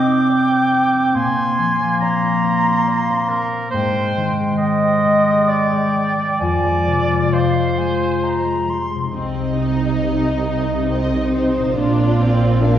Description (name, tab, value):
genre	cinematic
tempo	69 BPM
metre	3/4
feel	rubato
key	C minor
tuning	A4 = 440 Hz
part	clear oboe	second line	0.0-8.7 s	Bb4 to Bb5	-19 LUFS	right 1 dB	none
part	silver concert flute	second line	0.0-9.1 s	F5 to D6	-24 LUFS	equal	none
part	warm clarinet	second line	0.0-8.8 s	Ab3 to F4	-20 LUFS	equal	none
part	concert harp	arpeggios	0.0-12.8 s	F2 to D6	-23 LUFS	left 4 dB	none
part	warm symphonic violin section	melody	9.1-12.8 s	C5 to F5	-26 LUFS	left 2 dB	none
part	rich symphonic violin section	second line	9.1-12.8 s	C4 to F4	-24 LUFS	left 1 dB	none
part	rich symphonic viola section	accompaniment	9.1-12.8 s	Bb3 to Eb4	-23 LUFS	equal	none
part	rich symphonic double bass section	bass	9.1-12.8 s	Bb1 to C2	-21 LUFS	right 2 dB	none
part	warm symphonic cello section	bass	9.1-12.8 s	Bb2 to C3	-22 LUFS	right 3 dB	none
room	wet scoring stage reverb, RT60 1.8 s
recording	heard from further back in the room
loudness	-15 LUFS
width	side -10 dB against mid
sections	0.0-9.1 A section; 9.1-12.8 B section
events	none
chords	0.0 Cmadd9; 1.1 Bbadd9; 3.7 Abmaj7; 6.4 Fm7; 9.1 Cmadd9; 11.8 Bbadd9